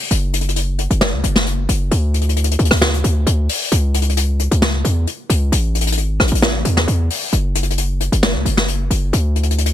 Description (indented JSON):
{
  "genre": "hip hop, trap",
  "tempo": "133 BPM",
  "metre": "4/4",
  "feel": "half-time",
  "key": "unclear",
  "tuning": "A4 = 439 Hz",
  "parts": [
    { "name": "hard-hitting 808-style bass", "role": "bass", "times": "0.1-9.7 s", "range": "F#1 to E2", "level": "-16 LUFS", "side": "equal", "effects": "none" },
    { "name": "jazz brush drum kit", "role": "drums", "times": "0.1-9.7 s", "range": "hi-hat, rim click, snare drum", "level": "-18 LUFS", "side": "left 2 dB", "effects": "soft clipping on snare" }
  ],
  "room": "little or no reverb",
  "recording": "dense, heavily limited modern master",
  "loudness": "-15 LUFS",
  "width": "side -11 dB against mid",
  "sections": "0.0-9.7 A section",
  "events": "none",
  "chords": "none",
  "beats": "| 0.11 0.56 1.01 1.46 | 1.91 2.36 2.81 3.27 | 3.72 4.17 4.62 5.07 | 5.52 5.97 6.42 6.88 | 7.33 7.78 8.23 8.68 | 9.13 9.58"
}